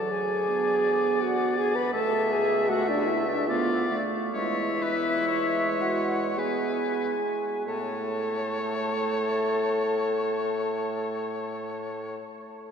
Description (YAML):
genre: classical, slow romantic movement for wind quintet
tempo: 44-83 BPM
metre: 3/4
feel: rubato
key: A major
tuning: A4 = 440 Hz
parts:
  - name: concert flute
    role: melody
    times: 0.0-12.2 s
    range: D5 to B5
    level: -33 LUFS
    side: left 5 dB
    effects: none
  - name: clear oboe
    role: second line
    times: 0.0-12.2 s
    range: B4 to E5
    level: -32 LUFS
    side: left 2 dB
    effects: none
  - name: mellow French horn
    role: accompaniment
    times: 0.0-12.2 s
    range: D4 to B4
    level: -28 LUFS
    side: right 1 dB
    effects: none
  - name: mellow clarinet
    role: accompaniment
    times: 0.0-12.2 s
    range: F#3 to B3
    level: -34 LUFS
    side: right 5 dB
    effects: none
  - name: mellow bassoon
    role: bass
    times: 0.0-12.2 s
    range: C#2 to A2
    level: -35 LUFS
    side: right 1 dB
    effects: none
room: wet cathedral reverb, RT60 6.2 s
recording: none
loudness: -24 LUFS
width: side -7 dB against mid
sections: 0.0-7.7 A section; 7.7-11.4 B section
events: slowing down 0.8-7.7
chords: 0.0 D; 1.9 A/C#; 3.5 Bm7b5/D; 4.3 E; 7.7 A